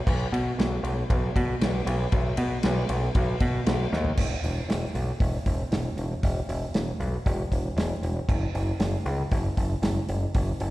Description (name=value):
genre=classic rock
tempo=117 BPM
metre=4/4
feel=straight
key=unclear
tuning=A4 = 439 Hz
part: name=growling picked electric bass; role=bass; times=0.1-10.7 s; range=E1 to B2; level=-26 LUFS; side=equal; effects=overdrive
part: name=damped 70s drum kit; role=drums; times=0.1-10.7 s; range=crash cymbal, hi-hat, kick drum, ride cymbal, snare drum, toms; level=-27 LUFS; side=equal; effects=none
room=little or no reverb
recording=live gig heard through the venue's PA, recital hall reverb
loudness=-24 LUFS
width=side -17 dB against mid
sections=0.0-4.2 A section; 4.2-10.7 B section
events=drum fill 3.9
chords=none